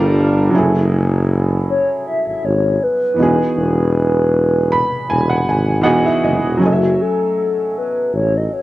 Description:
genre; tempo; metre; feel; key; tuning
hip hop; 79 BPM; 4/4; swing 56% on 16ths; unclear; A4 = 438 Hz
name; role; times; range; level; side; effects
dark upright piano; accompaniment; 0.0-8.6 s; E3 to B5; -18 LUFS; right 1 dB; cassette tape
mellow tuba; bass; 0.0-8.5 s; E1 to A1; -16 LUFS; equal; none
hollow clarinet-like synth lead; melody; 1.7-8.6 s; F#4 to E5; -18 LUFS; left 2 dB; chorus
room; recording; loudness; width
light reverb; none; -13 LUFS; side -16 dB against mid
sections
0.0-6.6 A section; 6.6-8.6 B section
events
none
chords
0.0 Gm7; 0.5 F#m7; 3.2 Emaj9; 6.6 F#m7

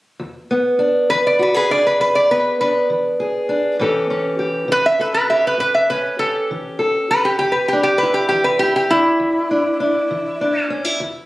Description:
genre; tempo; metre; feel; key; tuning
acoustic country blues, solo or duo; 67 BPM (dotted quarters); 12/8; straight; unclear; A4 = 440 Hz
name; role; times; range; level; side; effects
fingerpicked steel-string acoustic guitar; accompaniment; 0.2-11.3 s; E2 to A4; -19 LUFS; equal; none
lap resonator guitar; melody; 1.1-10.7 s; E4 to E5; -16 LUFS; equal; none
room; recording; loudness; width
moderate small room reverb, RT60 0.5 s; recorded on a phone in the room, studio reverb; -15 LUFS; side -18 dB against mid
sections
0.2-11.3 A section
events
none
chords
0.2 E7; 3.8 A7; 7.4 E7(no3)

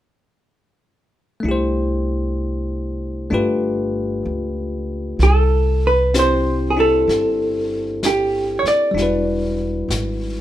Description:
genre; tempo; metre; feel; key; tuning
jazz ballad; 64 BPM; 4/4; swing 67% on 8ths; C major; A4 = 442 Hz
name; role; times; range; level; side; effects
bell-like tine electric piano; accompaniment; 1.4-10.4 s; G3 to C5; -22 LUFS; left 2 dB; none
upright bass; bass; 1.4-10.4 s; E1 to Db2; -22 LUFS; equal; none
vintage hollow-body jazz guitar; melody; 5.2-10.4 s; G4 to D5; -18 LUFS; right 1 dB; none
vintage brush drum kit; drums; 5.2-10.4 s; brushed snare drum, hi-hat, snare drum; -29 LUFS; left 3 dB; none
room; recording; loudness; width
light reverb; minimal, uncompressed stereo recording; -17 LUFS; side -12 dB against mid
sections
1.4-5.2 A section; 5.2-10.4 B section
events
none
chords
1.4 C6; 3.3 G7; 5.2 Cadd9; 9.0 Em7

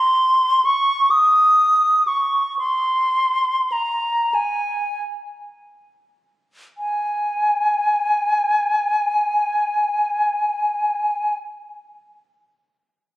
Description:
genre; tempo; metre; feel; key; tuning
classical, free, expressive piece for unaccompanied flute; 19-46 BPM (dotted quarters); 6/8; rubato; Ab major; A4 = 440 Hz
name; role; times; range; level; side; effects
silver concert flute; solo; 0.0-11.4 s; Ab5 to Eb6; -17 LUFS; equal; none
room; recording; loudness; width
moderate scoring stage reverb, RT60 1.8 s; recorded on a phone in the room, club reverb, compression; -17 LUFS; side -16 dB against mid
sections
0.0-6.8 A section; 6.8-10.6 B section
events
slowing down 0.0-6.8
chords
none

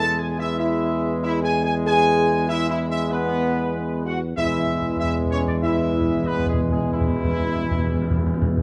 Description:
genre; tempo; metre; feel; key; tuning
classical; 90-97 BPM; 4/4; straight; unclear; A4 = 440 Hz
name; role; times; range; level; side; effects
dark trumpet section; melody; 0.0-8.6 s; E4 to A5; -28 LUFS; equal; none
bright trombone section; sustained chords; 0.0-8.6 s; E3 to G#3; -31 LUFS; equal; none
warm French horn section; sustained chords; 0.0-8.6 s; E3 to A4; -29 LUFS; equal; none
warm tuba; bass; 0.0-8.6 s; E2; -27 LUFS; equal; none
timpani; percussion; 0.0-0.2, 4.4-8.6 s; E2; -27 LUFS; equal; none
room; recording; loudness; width
light reverb; close, detailed microphones; -22 LUFS; mono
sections
0.0-8.6 A section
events
timpani fill 4.4-8.6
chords
0.0 E

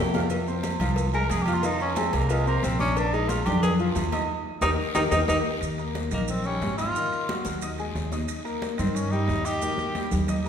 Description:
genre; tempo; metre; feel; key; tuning
Afro-Cuban jazz; 180 BPM; 4/4; straight; Eb major; A4 = 440 Hz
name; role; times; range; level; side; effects
clear concert grand piano; accompaniment; 0.0-10.5 s; D3 to F6; -30 LUFS; left 3 dB; none
upright bass; bass; 0.0-10.5 s; Ab1 to G2; -28 LUFS; equal; none
agogo bells and timbales; percussion; 0.1-10.5 s; none; -34 LUFS; right 9 dB; none
bongos and cowbell; percussion; 0.1-5.4 s; none; -34 LUFS; left 3 dB; none
congas; percussion; 0.1-10.4 s; none; -32 LUFS; left 1 dB; none
guiro; percussion; 0.1-10.5 s; none; -42 LUFS; left 4 dB; none
maracas; percussion; 0.1-10.5 s; none; -43 LUFS; right 7 dB; none
warm tenor saxophone; melody; 1.1-10.1 s; Ab3 to Bb4; -28 LUFS; equal; none
room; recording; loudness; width
wet scoring stage reverb, RT60 1.7 s; recorded in a church or concert hall; -23 LUFS; side -8 dB against mid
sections
0.0-5.6 A section; 5.6-10.5 B section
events
drum fill 0.0-0.3, 9.6-10.5; tenor saxophone solo 0.0-5.6; band accent 4.3-5.6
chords
0.3 Fm; 3.0 Bb7; 4.3 Eb; 5.6 Eb7; 7.0 Ab5; 8.3 Eb

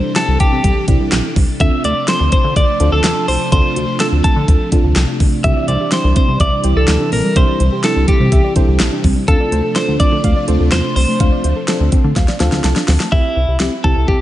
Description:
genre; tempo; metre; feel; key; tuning
synth-pop; 125 BPM; 4/4; straight; C major; A4 = 441 Hz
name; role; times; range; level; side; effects
twelve-string electric guitar; melody; 0.0-14.2 s; E4 to E5; -18 LUFS; equal; tape echo
string machine, violas; sustained chords; 0.0-13.1 s; C3 to A4; -22 LUFS; equal; ensemble chorus
mellow FM electric piano; accompaniment; 0.2-14.2 s; C4 to A5; -23 LUFS; right 1 dB; chorus, phaser, slapback echo
pop drum kit; drums; 0.2-14.2 s; handclaps, hi-hat, kick drum, snare drum; -15 LUFS; equal; none
chorused synth bass; bass; 0.3-14.2 s; Bb1 to D3; -16 LUFS; equal; none
soft round pluck; arpeggios; 5.4-13.1 s; G3 to F5; -24 LUFS; right 3 dB; chorus, slapback echo, tape echo
room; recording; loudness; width
light reverb, digital ambience; nothing above 10.4 kHz; -12 LUFS; side -14 dB against mid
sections
0.0-13.1 A section; 13.1-14.2 B section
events
drum fill 12.2-13.1; FM electric piano fill 12.2-13.1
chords
0.0 Cadd9; 1.6 Dm7; 5.4 Cadd9; 9.3 Dm7; 13.1 C

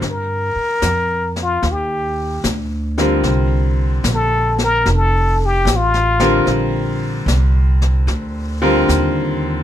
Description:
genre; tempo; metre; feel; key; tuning
jazz ballad; 74 BPM; 4/4; swing 66% on 8ths; Bb major; A4 = 440 Hz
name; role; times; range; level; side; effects
bright upright piano; accompaniment; 0.0-9.6 s; D3 to Bb4; -18 LUFS; left 1 dB; none
upright bass; bass; 0.0-9.6 s; F1 to G2; -18 LUFS; right 1 dB; none
jazz brush drum kit; drums; 0.0-9.6 s; brushed snare drum, hi-hat, snare drum; -25 LUFS; left 3 dB; none
trumpet with plunger mute; melody; 0.1-6.5 s; F4 to Bb4; -17 LUFS; left 2 dB; none
room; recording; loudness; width
little or no reverb; close, detailed microphones; -14 LUFS; side -11 dB against mid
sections
0.0-9.6 A section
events
muted trumpet solo 0.0-9.6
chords
0.0 Ebmaj9; 3.3 C5; 4.9 F69; 6.5 Bbadd9

